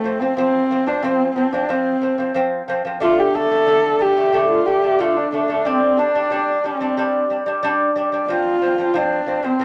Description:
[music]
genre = mongolian traditional, Mongolian folk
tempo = 91 BPM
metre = 4/4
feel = straight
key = F gong mode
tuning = A4 = 441 Hz
[part]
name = dark horsehead fiddle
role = melody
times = 0.0-9.6 s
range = A3 to A4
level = -21 LUFS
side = equal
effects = none
[part]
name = lute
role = arpeggios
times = 0.0-9.6 s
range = D3 to D4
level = -22 LUFS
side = equal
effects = none
[sound]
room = wet studio reverb, RT60 0.5 s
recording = none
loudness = -19 LUFS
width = mono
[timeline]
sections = 0.0-9.6 A section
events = none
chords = 0.0 F5; 3.0 D5; 5.6 G5; 8.3 F5

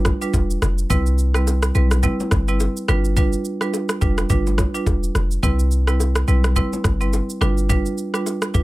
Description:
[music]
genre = afrobeats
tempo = 106 BPM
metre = 4/4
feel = swing 58% on 16ths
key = C major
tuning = A4 = 441 Hz
[part]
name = clean 808-style bass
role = bass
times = 0.0-8.6 s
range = E1 to C2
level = -19 LUFS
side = equal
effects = none
[part]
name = afro-pop drum kit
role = drums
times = 0.1-8.6 s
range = kick drum, rim click, shaker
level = -22 LUFS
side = equal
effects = none
[part]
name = bongos and congas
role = percussion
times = 0.1-8.6 s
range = none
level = -30 LUFS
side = left 5 dB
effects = none
[part]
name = marimba with medium mallets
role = accompaniment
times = 0.2-8.6 s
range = G3 to B4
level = -23 LUFS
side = right 2 dB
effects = none
[sound]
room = little or no reverb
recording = faint mains hum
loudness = -17 LUFS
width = side -18 dB against mid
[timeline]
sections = 0.0-8.6 A section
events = none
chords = 0.0 G7; 0.9 Cmaj7; 2.9 G7; 5.4 Cmaj7; 7.4 G7

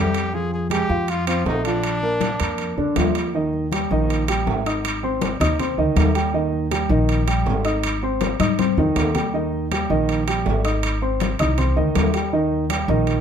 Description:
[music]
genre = latin, Cuban son and guajira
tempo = 160 BPM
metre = 4/4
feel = straight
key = Eb major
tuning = A4 = 439 Hz
[part]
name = clear trumpet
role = melody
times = 0.0-3.1 s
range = D4 to Ab4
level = -26 LUFS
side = left 1 dB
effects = none
[part]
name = dark baby grand piano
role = arpeggios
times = 0.0-13.2 s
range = D3 to Eb6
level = -22 LUFS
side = right 1 dB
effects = none
[part]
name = upright bass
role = bass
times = 0.0-13.2 s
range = Ab1 to Ab2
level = -23 LUFS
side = equal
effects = none
[part]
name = congas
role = percussion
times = 0.1-13.2 s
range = none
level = -27 LUFS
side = left 7 dB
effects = none
[part]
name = timbales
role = percussion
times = 0.1-13.2 s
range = none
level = -27 LUFS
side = right 4 dB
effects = none
[sound]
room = moderate studio reverb, RT60 0.7 s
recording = minimal, uncompressed stereo recording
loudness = -18 LUFS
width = side -8 dB against mid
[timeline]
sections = 0.0-3.3 A section; 3.3-13.2 B section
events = drum fill 8.4-9.3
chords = 0.3 Fm; 1.8 Bb; 3.3 Eb; 4.8 Ab; 6.3 Eb; 7.8 Ab; 9.3 Eb; 10.8 Ab; 12.3 Eb

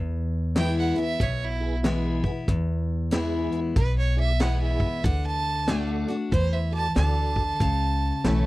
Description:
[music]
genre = honky-tonk and classic country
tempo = 94 BPM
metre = 4/4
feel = swing 62% on 8ths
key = unclear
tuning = A4 = 439 Hz
[part]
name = picked steel-string acoustic guitar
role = accompaniment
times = 0.0-8.5 s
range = E2 to F#4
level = -28 LUFS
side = left 3 dB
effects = none
[part]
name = upright bass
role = bass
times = 0.0-8.5 s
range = B1 to E2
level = -26 LUFS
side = equal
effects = none
[part]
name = clear fiddle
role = second line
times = 0.6-8.5 s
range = E4 to A5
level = -29 LUFS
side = right 3 dB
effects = none
[part]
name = tonewheel organ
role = accompaniment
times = 0.6-8.5 s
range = E4 to D5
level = -34 LUFS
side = right 5 dB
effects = slow rotary speaker, chorus vibrato
[part]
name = vintage drum kit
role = drums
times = 0.6-8.4 s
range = hi-hat, kick drum, snare drum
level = -26 LUFS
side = equal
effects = none
[sound]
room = little or no reverb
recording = dry, close 1970s-style studio recording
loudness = -22 LUFS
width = side -19 dB against mid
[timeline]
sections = 0.0-8.5 A section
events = fiddle solo 0.0-8.5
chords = 0.0 E; 5.0 D; 7.6 A

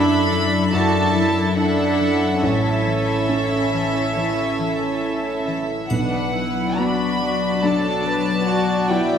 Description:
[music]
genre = cinematic, emotional film score for orchestra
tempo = 70 BPM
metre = 4/4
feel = rubato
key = D major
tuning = A4 = 441 Hz
[part]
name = rich studio violin section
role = melody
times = 0.0-9.2 s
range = E5 to B5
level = -25 LUFS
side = equal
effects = none
[part]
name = warm studio violin section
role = second line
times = 0.0-9.2 s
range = F#4 to F#5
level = -25 LUFS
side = equal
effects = none
[part]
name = dark baby grand piano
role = accompaniment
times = 0.0-9.2 s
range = A1 to A4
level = -24 LUFS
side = right 1 dB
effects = none
[part]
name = warm studio viola section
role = accompaniment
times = 0.0-9.2 s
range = F#3 to F#4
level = -26 LUFS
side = right 2 dB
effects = none
[part]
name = concert harp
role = arpeggios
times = 0.0-9.2 s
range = F#2 to A4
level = -25 LUFS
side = left 8 dB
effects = none
[part]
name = warm studio cello section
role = bass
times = 0.0-9.2 s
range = C#4 to F#4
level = -25 LUFS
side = right 2 dB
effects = none
[part]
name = triangle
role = percussion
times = 5.9-7.6 s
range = none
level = -45 LUFS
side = left 1 dB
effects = none
[sound]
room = wet scoring stage reverb, RT60 1.5 s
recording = none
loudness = -18 LUFS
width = side -8 dB against mid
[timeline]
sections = 0.0-9.2 A section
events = none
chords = 0.0 Dadd9/F#; 2.4 A; 5.9 Bm

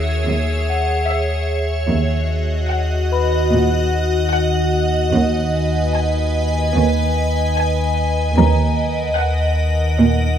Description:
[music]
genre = cinematic, suspense film score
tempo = 74 BPM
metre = 4/4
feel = straight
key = Eb phrygian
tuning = A4 = 440 Hz
[part]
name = warm symphonic violin section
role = melody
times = 0.0-9.8 s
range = Fb5 to Ab5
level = -25 LUFS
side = left 2 dB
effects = none
[part]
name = icy glass pad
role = sustained chords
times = 0.0-10.4 s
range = Gb4 to Ab5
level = -20 LUFS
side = equal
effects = chorus, built-in reverb
[part]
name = deep rumbling drone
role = drone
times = 0.0-10.4 s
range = Eb2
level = -19 LUFS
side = equal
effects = built-in reverb
[part]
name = celesta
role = texture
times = 0.0-10.4 s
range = Cb5 to Cb6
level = -26 LUFS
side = left 7 dB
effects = none
[part]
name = warm symphonic violin section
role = texture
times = 0.0-1.4 s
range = Eb6 to Fb6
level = -34 LUFS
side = right 2 dB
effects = none
[part]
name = rich symphonic cello section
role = bass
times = 0.3-10.4 s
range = Eb2 to Bb2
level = -19 LUFS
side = right 3 dB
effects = none
[part]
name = rich symphonic double bass section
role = bass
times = 1.9-9.0 s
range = Eb2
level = -21 LUFS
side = right 3 dB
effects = none
[sound]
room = light reverb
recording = close, detailed microphones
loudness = -16 LUFS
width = side -9 dB against mid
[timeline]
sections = 0.0-10.4 A section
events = none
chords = 0.0 Dbmadd9/Eb; 1.9 Ebm; 5.1 Abm/Eb; 8.4 Ebm

